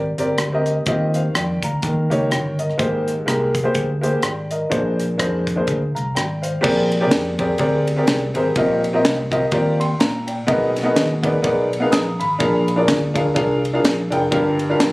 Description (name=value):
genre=uptempo gospel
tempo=125 BPM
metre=4/4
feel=swing 58% on 8ths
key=unclear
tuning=A4 = 440 Hz
part: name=fingered electric bass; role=bass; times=0.0-14.9 s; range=F1 to Bb2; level=-24 LUFS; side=equal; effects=none
part: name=warm upright piano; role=accompaniment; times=0.2-14.9 s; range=G2 to Eb6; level=-19 LUFS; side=equal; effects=none
part: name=tight funk drum kit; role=drums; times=0.2-14.9 s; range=crash cymbal, hi-hat, kick drum, ride cymbal, rim click, snare drum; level=-22 LUFS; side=equal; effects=none
room=moderate large studio reverb, RT60 1.1 s, studio reverb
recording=recorded on a phone in the room, club reverb, compression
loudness=-17 LUFS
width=side -21 dB against mid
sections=0.0-6.6 A section; 6.6-14.9 B section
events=none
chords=0.0 Abmaj9#11; 0.9 Eb69; 1.8 Eb7; 2.8 Abmaj9; 4.7 Bb9; 6.6 Bb13; 8.6 Eb69/Bb; 10.5 Abmadd9/Cb; 12.4 Bb7; 14.3 Gm7